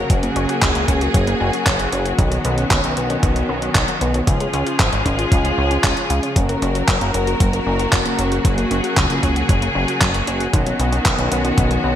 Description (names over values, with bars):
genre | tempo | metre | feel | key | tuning
italo disco | 115 BPM | 4/4 | straight | F# major | A4 = 440 Hz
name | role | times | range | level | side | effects
rich studio string section | sustained chords | 0.0-12.0 s | C#3 to A#4 | -21 LUFS | left 1 dB | none
chorused synth bass | bass | 0.0-12.0 s | F#1 to C#2 | -22 LUFS | equal | none
wide unison pluck | arpeggios | 0.1-11.9 s | D#3 to E#5 | -26 LUFS | left 1 dB | ping-pong delay
clean 12-bit digital drum machine | drums | 0.1-11.8 s | handclaps, hi-hat | -22 LUFS | equal | overdrive, gated reverb
electronic kick drum | drums | 0.1-11.7 s | none | -19 LUFS | equal | overdrive
room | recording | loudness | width
moderate plate reverb, RT60 1.7 s, digital ambience | bright 1980s-style digital production, vinyl crackle | -16 LUFS | side -10 dB against mid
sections
0.0-12.0 A section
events
none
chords
0.0 F#; 2.2 Badd9; 4.3 C#; 6.4 F#; 10.5 Badd9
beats
| 0.10 0.62 1.14 1.67 | 2.19 2.71 3.23 3.75 | 4.27 4.79 5.32 5.84 | 6.36 6.88 7.40 7.93 | 8.45 8.97 9.49 10.01 | 10.54 11.06 11.58